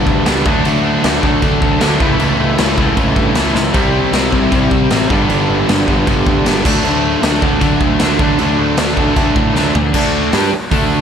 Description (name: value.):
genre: punk rock.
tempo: 155 BPM.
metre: 4/4.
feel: straight.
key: D major.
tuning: A4 = 440 Hz.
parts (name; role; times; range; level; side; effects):
distorted electric guitar; riff; 0.0-11.0 s; G2 to G4; -18 LUFS; left 11 dB; distortion.
distorted electric guitar; riff; 0.0-11.0 s; G2 to G4; -19 LUFS; right 11 dB; distortion.
sludgy distorted guitar; riff; 0.0-11.0 s; G2 to G4; -19 LUFS; equal; overdrive.
fuzz picked electric bass; bass; 0.0-11.0 s; G1 to A2; -19 LUFS; equal; overdrive.
raw garage drum kit; drums; 0.1-10.8 s; crash cymbal, hi-hat, kick drum, snare drum, toms; -17 LUFS; equal; none.
room: little or no reverb.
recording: none.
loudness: -11 LUFS.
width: side -8 dB against mid.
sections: 0.0-9.9 A section; 9.9-11.0 B section.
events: drum fill 3.6, 9.6-9.9.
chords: 0.5 D; 2.0 A/C#; 3.7 C; 5.1 G; 6.6 D; 9.9 D5.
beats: 0.26 | 0.65 1.03 1.42 1.81 | 2.20 2.58 2.97 3.36 | 3.75 4.13 4.52 4.91 | 5.29 5.68 6.07 6.46 | 6.84 7.23 7.62 8.00 | 8.39 8.78 9.16 9.55 | 9.94 10.33 10.71.